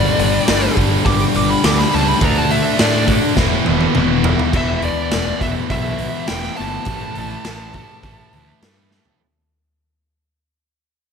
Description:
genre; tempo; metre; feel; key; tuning
hard rock; 103 BPM; 4/4; straight; E minor; A4 = 440 Hz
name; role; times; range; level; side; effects
high-gain lead guitar; melody; 0.0-8.6 s; D5 to D6; -23 LUFS; equal; distortion, digital delay
distorted electric guitar; riff; 0.0-9.2 s; E2 to D4; -23 LUFS; left 14 dB; distortion
high-gain distorted guitar; riff; 0.0-4.5 s; E2 to D4; -23 LUFS; equal; distortion
scooped high-gain guitar; riff; 0.0-9.2 s; E2 to D4; -23 LUFS; right 12 dB; distortion
fuzz picked electric bass; bass; 0.0-9.0 s; E1 to A2; -22 LUFS; right 1 dB; overdrive
raw garage drum kit; drums; 0.2-9.2 s; crash cymbal, hi-hat, kick drum, snare drum, toms; -19 LUFS; equal; none
room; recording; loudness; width
light reverb, small room ambience; none; -14 LUFS; side -6 dB against mid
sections
0.0-4.5 A section; 4.5-9.2 B section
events
lead electric guitar solo 0.0-4.5; drum fill 3.4-4.5, 8.9; fade-out 4.5-9.2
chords
0.0 G5; 2.2 D5; 3.4 E5; 6.9 A5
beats
0.47 1.05 1.63 | 2.21 2.79 3.36 3.94 | 4.53 5.11 5.69 6.27 | 6.86 7.44 8.03 8.62

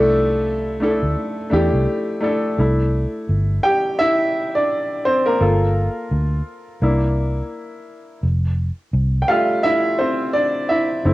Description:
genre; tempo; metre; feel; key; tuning
lo-fi hip hop; 85 BPM; 4/4; swing 58% on 16ths; unclear; A4 = 440 Hz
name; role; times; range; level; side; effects
clear upright piano; accompaniment; 0.0-11.1 s; G3 to G5; -18 LUFS; equal; cassette tape
vintage muted fingered electric bass; bass; 0.0-11.1 s; F1 to E2; -18 LUFS; equal; none
room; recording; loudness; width
moderate spring reverb, RT60 1.3 s, studio ambience; home recording on cassette; -17 LUFS; side -18 dB against mid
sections
0.0-2.6 A section; 2.6-11.1 B section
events
break 1.9-2.6; upright piano solo 2.6-11.1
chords
0.0 C6; 5.4 Gm7; 6.8 C9; 8.2 Fmaj7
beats
0.46 1.17 1.87 | 2.58 3.29 3.99 4.70 | 5.40 6.11 6.81 7.52 | 8.23 8.93 9.64 10.34 | 11.05

